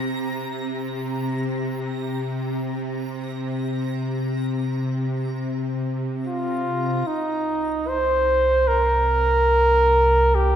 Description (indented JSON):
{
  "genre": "ambient",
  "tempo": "free time",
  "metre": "none",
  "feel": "none",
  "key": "C minor",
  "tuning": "A4 = 441 Hz",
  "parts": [
    { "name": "bowed-like drone", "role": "drone", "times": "0.0-10.6 s", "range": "C3", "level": "-26 LUFS", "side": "left 1 dB", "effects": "built-in reverb" },
    { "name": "backwards swelling texture", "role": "texture", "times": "0.0-7.1 s", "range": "Bb5 to Bb6", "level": "-39 LUFS", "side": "equal", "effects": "built-in reverb" },
    { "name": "mellow flugelhorn", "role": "melody", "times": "6.3-10.6 s", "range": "Eb4 to C5", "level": "-18 LUFS", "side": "right 1 dB", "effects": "ping-pong delay" },
    { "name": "round analog bass", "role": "bass", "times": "7.1-10.6 s", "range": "C2", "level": "-23 LUFS", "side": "equal", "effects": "none" }
  ],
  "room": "wet concert hall reverb, RT60 2.5 s",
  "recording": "none",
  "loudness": "-20 LUFS",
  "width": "side -10 dB against mid",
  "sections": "0.0-7.1 A section; 7.1-10.6 B section",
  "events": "fade-out on synth texture 0.0-7.1; fade-in on synth drone 7.1-10.6",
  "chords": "0.0 Bbsus2/C"
}